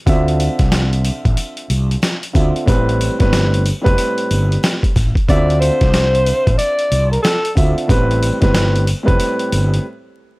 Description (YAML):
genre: hip hop, boom-bap hip-hop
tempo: 92 BPM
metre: 4/4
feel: swing 62% on 16ths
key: D minor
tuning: A4 = 440 Hz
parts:
  - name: dark grand piano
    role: accompaniment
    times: 0.1-9.8 s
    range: A2 to E5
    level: -19 LUFS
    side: right 1 dB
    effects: high-pass filter, low-pass filter
  - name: fretless electric bass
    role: bass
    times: 0.1-9.8 s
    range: F1 to D2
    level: -16 LUFS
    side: equal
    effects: transformer saturation
  - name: boom bap sampler-style drum kit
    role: drums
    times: 0.1-9.8 s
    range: hi-hat, kick drum, snare drum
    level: -17 LUFS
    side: equal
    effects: none
  - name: sleigh bells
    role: percussion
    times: 0.1-9.7 s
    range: none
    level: -36 LUFS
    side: left 1 dB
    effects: none
  - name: breathy tenor saxophone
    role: melody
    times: 5.3-7.5 s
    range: A4 to D5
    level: -17 LUFS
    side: equal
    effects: high-pass filter, low-pass filter
room: small room ambience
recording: dry, gritty hardware recording, vinyl crackle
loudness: -13 LUFS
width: side -22 dB against mid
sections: 0.0-10.4 A section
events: break 0.1-5.3, 9.8-10.4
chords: 0.1 Dm9; 2.7 Am9; 5.3 Dm9; 7.9 Am9